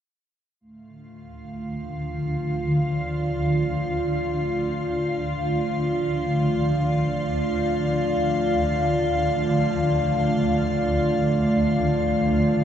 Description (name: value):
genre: dark ambient drone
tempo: free time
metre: none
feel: none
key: unclear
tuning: A4 = 440 Hz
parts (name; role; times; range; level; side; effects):
- dark analog pad; sustained chords; 0.6-12.6 s; A3 to F5; -24 LUFS; equal; chorus, shimmer reverb
- swarming drone; drone; 1.7-12.6 s; D2 to D3; -25 LUFS; equal; built-in reverb
- icy glass pad; texture; 1.4-12.6 s; F4 to F5; -29 LUFS; left 1 dB; chorus, built-in reverb, shimmer reverb
room: wet plate reverb, RT60 2.9 s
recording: cassette tape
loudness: -21 LUFS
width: side -9 dB against mid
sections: 0.6-12.6 A section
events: none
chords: 0.6 Dm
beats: free time